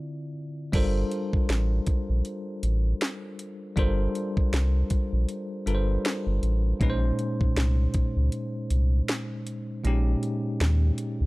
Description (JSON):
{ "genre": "contemporary R&B", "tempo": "79 BPM", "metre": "4/4", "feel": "swing 58% on 16ths", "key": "unclear", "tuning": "A4 = 440 Hz", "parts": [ { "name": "bell-like tine electric piano", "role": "accompaniment", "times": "0.0-11.3 s", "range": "Bb2 to D5", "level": "-30 LUFS", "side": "left 1 dB", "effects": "fast stereo tremolo" }, { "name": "sub bass with octave", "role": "bass", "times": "0.7-11.3 s", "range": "G1 to Eb2", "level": "-23 LUFS", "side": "equal", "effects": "none" }, { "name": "trap drum kit", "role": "drums", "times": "0.7-11.2 s", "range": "crash cymbal, hi-hat, kick drum, snare drum", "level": "-26 LUFS", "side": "equal", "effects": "none" } ], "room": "little or no reverb", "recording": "dry, gritty hardware recording", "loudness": "-24 LUFS", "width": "side -21 dB against mid", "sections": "0.7-11.3 A section", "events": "break 0.0-0.7; kick muted 9.8-11.3", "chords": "0.0 Dm7; 0.7 Gm11; 6.8 Bbm11", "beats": "| 0.73 1.49 2.25 3.01 | 3.77 4.53 5.29 6.05 | 6.81 7.57 8.33 9.09 | 9.85 10.61" }